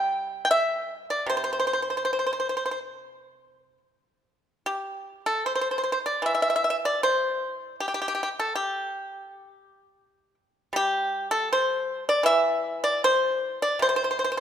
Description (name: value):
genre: chinese traditional, Chinese solo plucked strings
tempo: 65-84 BPM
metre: 4/4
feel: rubato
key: C gong mode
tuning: A4 = 439 Hz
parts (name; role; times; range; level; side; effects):
- pipa; solo; 0.0-14.4 s; C3 to G5; -23 LUFS; equal; none
room: moderate scoring stage reverb, RT60 1.9 s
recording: minimal, uncompressed stereo recording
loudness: -23 LUFS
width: side -9 dB against mid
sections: 0.0-4.6 A section; 4.6-14.4 B section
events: none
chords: none